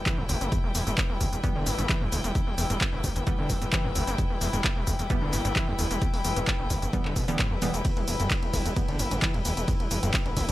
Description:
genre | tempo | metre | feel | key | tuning
driving peak-time techno | 131 BPM | 4/4 | straight | E minor | A4 = 439 Hz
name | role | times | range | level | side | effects
gritty driven synth bass | bass | 0.0-10.5 s | E1 to G1 | -31 LUFS | equal | sidechain pumping
rich studio string section | texture | 0.0-10.5 s | E4 to G5 | -33 LUFS | left 2 dB | sidechain pumping
screaming distorted acid line | riff | 0.1-10.5 s | D2 to E3 | -32 LUFS | equal | distortion, chorus, sidechain pumping, tape echo
electronic kick drum | drums | 0.1-10.5 s | none | -28 LUFS | equal | none
punchy analog drum machine | drums | 0.1-10.5 s | handclaps, hi-hat, ride cymbal, shaker | -31 LUFS | equal | none
wavetable chord stab | stabs | 1.4-8.9 s | E3 to B3 | -35 LUFS | right 2 dB | sidechain pumping, tape echo
room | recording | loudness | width
light reverb | none | -24 LUFS | side -16 dB against mid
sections
0.0-10.5 A section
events
none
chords
0.0 Em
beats
0.06 | 0.52 0.98 1.44 1.89 | 2.35 2.81 3.27 3.73 | 4.18 4.64 5.10 5.56 | 6.02 6.47 6.93 7.39 | 7.85 8.31 8.76 9.22 | 9.68 10.14

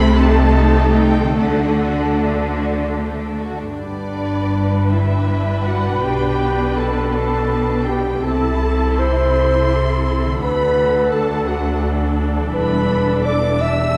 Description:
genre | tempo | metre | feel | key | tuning
classical | 48-58 BPM (dotted quarters) | 6/8 | rubato | G major | A4 = 440 Hz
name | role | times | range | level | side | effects
dark symphonic violin section | melody | 0.0-14.0 s | E5 to B5 | -34 LUFS | equal | none
warm symphonic violin section | second line | 0.0-14.0 s | A3 to E6 | -28 LUFS | equal | none
warm symphonic viola section | accompaniment | 0.0-14.0 s | A3 to B4 | -24 LUFS | equal | none
concert harp | arpeggios | 0.0-14.0 s | G2 to A4 | -32 LUFS | equal | none
rich studio double bass section | bass | 0.0-14.0 s | E1 to D2 | -23 LUFS | equal | none
rich symphonic cello section | bass | 0.0-14.0 s | D2 to D3 | -26 LUFS | equal | none
dark clarinet | second line | 3.8-14.0 s | D4 to E5 | -23 LUFS | equal | none
room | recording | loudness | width
wet concert hall reverb, RT60 1.8 s | recorded in a church or concert hall | -18 LUFS | mono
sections
0.0-3.8 A section; 3.8-14.0 B section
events
none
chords
0.2 Am7b5/C; 1.4 D; 3.8 G; 6.0 G/B; 8.2 Am/C; 10.4 D; 12.5 Em7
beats
0.20 | 1.37 2.60 | 3.79 4.92 | 6.03 7.14 | 8.24 9.35 | 10.41 11.46 | 12.54 13.61

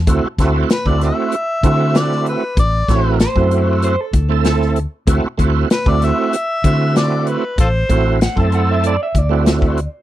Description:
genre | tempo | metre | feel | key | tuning
straight-eighth soul blues | 96 BPM | 4/4 | straight | D mixolydian | A4 = 440 Hz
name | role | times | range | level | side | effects
vintage muted fingered electric bass | bass | 0.0-9.9 s | A1 to D3 | -17 LUFS | left 1 dB | none
overdriven tonewheel organ | accompaniment | 0.1-9.8 s | A3 to A4 | -18 LUFS | right 5 dB | slow rotary speaker, chorus vibrato
warm soul drum kit | drums | 0.1-9.9 s | hi-hat, kick drum, snare drum | -17 LUFS | left 1 dB | none
warm harmonica | melody | 0.7-8.2 s | F4 to E5 | -21 LUFS | left 2 dB | overdrive, tape echo
electric guitar through a small old amp | second line | 3.2-9.9 s | A4 to A5 | -22 LUFS | right 2 dB | none
room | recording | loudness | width
little or no reverb | none | -13 LUFS | side -14 dB against mid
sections
0.1-10.0 A section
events
none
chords
0.1 D9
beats
| 0.08 0.70 1.33 1.95 | 2.58 3.20 3.83 4.46 | 5.08 5.71 6.33 6.96 | 7.59 8.21 8.84 9.46

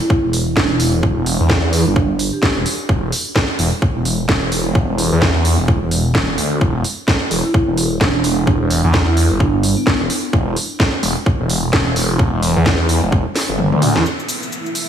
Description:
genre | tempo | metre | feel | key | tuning
bass house | 129 BPM | 4/4 | swing 59% on 16ths | E minor | A4 = 441 Hz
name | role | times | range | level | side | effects
marimba with soft mallets | melody | 0.0-3.0, 7.4-10.1 s | B3 to G4 | -22 LUFS | right 2 dB | diffuse ambient delay
electronic kick drum | drums | 0.1-13.2 s | none | -19 LUFS | equal | none
phased detuned saw bass | bass | 0.2-14.0 s | E1 to E2 | -16 LUFS | equal | phaser, overdrive, sidechain pumping
garage drum kit | drums | 0.3-14.9 s | cabasa, hi-hat, snare drum, toms | -20 LUFS | right 1 dB | none
dark analog pad | sustained chords | 14.6-14.9 s | B3 to E4 | -45 LUFS | right 2 dB | none
downlifter | sound effects | 14.1-14.9 s | none | -28 LUFS | right 1 dB | none
granular cloud pad | texture | 14.4-14.9 s | E4 to E5 | -29 LUFS | right 1 dB | built-in reverb, lush chorus, sidechain pumping
room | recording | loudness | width
light reverb | small room ambience | -14 LUFS | side -9 dB against mid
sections
0.0-14.1 A section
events
filter sweep on detuned saw bass 0.0-14.1; drum fill 13.4-14.1; kick drops out 13.6-14.1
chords
0.0 N.C.; 14.1 E5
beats
0.10 0.57 | 1.03 1.50 1.96 2.43 | 2.89 3.36 3.82 4.29 | 4.75 5.22 5.68 6.15 | 6.61 7.08 7.54 8.01 | 8.47 8.94 9.40 9.87 | 10.33 10.80 11.26 11.73 | 12.19 12.66 13.12 13.59 | 14.05 14.52

